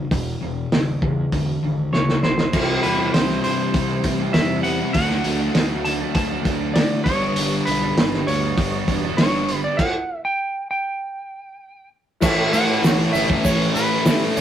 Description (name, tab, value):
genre	classic rock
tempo	99 BPM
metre	4/4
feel	straight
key	unclear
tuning	A4 = 440 Hz
part	crunchy overdriven guitar	riff	0.0-14.4 s	E2 to A4	-26 LUFS	left 6 dB	none
part	raw garage guitar	riff	0.0-14.4 s	E2 to E4	-25 LUFS	right 4 dB	overdrive
part	fuzz fingered electric bass	bass	0.0-14.4 s	E1 to A2	-28 LUFS	equal	overdrive
part	cloth-damped thuddy drum kit	drums	0.1-14.4 s	crash cymbal, hi-hat, kick drum, snare drum	-21 LUFS	equal	none
part	clean lap steel guitar	melody	1.9-14.4 s	B4 to A5	-25 LUFS	right 1 dB	none
part	reed electric piano	accompaniment	12.2-14.4 s	E4 to E5	-28 LUFS	left 1 dB	fast tremolo
part	overdriven electric guitar	riff	12.2-14.4 s	A2 to E4	-25 LUFS	right 1 dB	phaser
part	tube shaker	percussion	12.2-14.4 s	none	-39 LUFS	right 5 dB	none
room	moderate studio reverb, RT60 0.6 s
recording	rough rehearsal-room recording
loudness	-18 LUFS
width	side -10 dB against mid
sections	0.0-2.5 A section; 2.5-12.2 B section; 12.2-14.4 C section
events	drum fill 1.9-2.5; stop 9.8-12.2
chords	0.0 E; 2.5 C; 5.0 D; 7.1 G; 12.2 A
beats	| 0.11 0.72 1.33 1.94 | 2.54 3.15 3.75 4.35 | 4.95 5.56 6.16 6.76 | 7.37 7.97 8.57 9.18 | 9.79 10.40 11.01 11.62 | 12.23 12.84 13.45 14.07